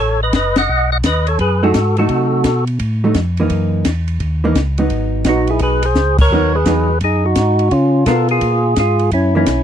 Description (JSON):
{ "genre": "soul jazz organ trio", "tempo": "171 BPM", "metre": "4/4", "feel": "swing 65% on 8ths", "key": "unclear", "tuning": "A4 = 440 Hz", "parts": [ { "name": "percussive tonewheel organ", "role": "melody", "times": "0.0-2.6, 5.3-9.6 s", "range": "C#4 to F#5", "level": "-16 LUFS", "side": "equal", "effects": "slow rotary speaker, overdrive" }, { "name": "mellow tonewheel organ", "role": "bass", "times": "0.0-9.6 s", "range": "F#1 to C#3", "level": "-17 LUFS", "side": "equal", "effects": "slow rotary speaker" }, { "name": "compact cocktail drum kit", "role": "drums", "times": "0.3-9.6 s", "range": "crash cymbal, hi-hat, kick drum, ride cymbal, snare drum", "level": "-19 LUFS", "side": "left 1 dB", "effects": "none" }, { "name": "vintage hollow-body jazz guitar", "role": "accompaniment", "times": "1.6-9.5 s", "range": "E3 to A#4", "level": "-18 LUFS", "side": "right 2 dB", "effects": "none" } ], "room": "little or no reverb", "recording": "dry, close 1970s-style studio recording", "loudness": "-13 LUFS", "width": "side -9 dB against mid", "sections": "0.0-9.6 A section", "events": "band accent 0.5, 6.1", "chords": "0.0 B13; 2.1 Cdim7; 3.5 F#6; 4.9 G#m7; 7.7 C#6; 9.1 F#6" }